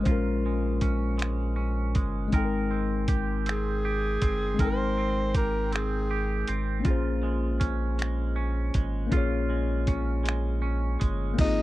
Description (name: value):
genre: slow six-eight R&B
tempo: 53 BPM (dotted quarters)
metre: 6/8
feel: straight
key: unclear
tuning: A4 = 440 Hz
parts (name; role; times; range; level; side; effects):
- twangy electric guitar; second line; 0.0-11.6 s; Bb2 to Bb4; -35 LUFS; right 6 dB; wide subtle chorus
- mellow tine electric piano; accompaniment; 0.0-11.6 s; Ab3 to G5; -30 LUFS; left 5 dB; none
- round analog bass; bass; 0.0-11.6 s; G1 to Bb1; -29 LUFS; equal; none
- dusty soul sampler-style drum kit; drums; 0.1-11.6 s; crash cymbal, finger snaps, hi-hat, kick drum; -26 LUFS; equal; none
- breathy tenor saxophone; melody; 3.5-6.5, 11.4-11.6 s; Eb4 to C5; -31 LUFS; right 1 dB; none
room: little or no reverb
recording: dry, close 1970s-style studio recording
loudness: -25 LUFS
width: side -16 dB against mid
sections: 0.0-11.4 A section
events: none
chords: 0.0 Bbm7; 2.3 Abmaj9; 6.9 Bbm7